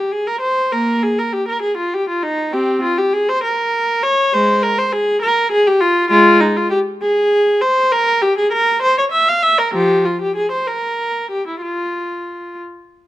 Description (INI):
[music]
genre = classical, baroque-style suite movement for unaccompanied viola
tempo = 66 BPM (dotted quarters)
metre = 6/8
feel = rubato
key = F minor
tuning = A4 = 440 Hz
[part]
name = warm viola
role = solo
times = 0.0-12.6 s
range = F3 to F5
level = -14 LUFS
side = equal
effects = none
[sound]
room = light reverb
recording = close, detailed microphones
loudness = -14 LUFS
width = side -14 dB against mid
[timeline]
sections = 0.0-13.1 A section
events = none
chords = none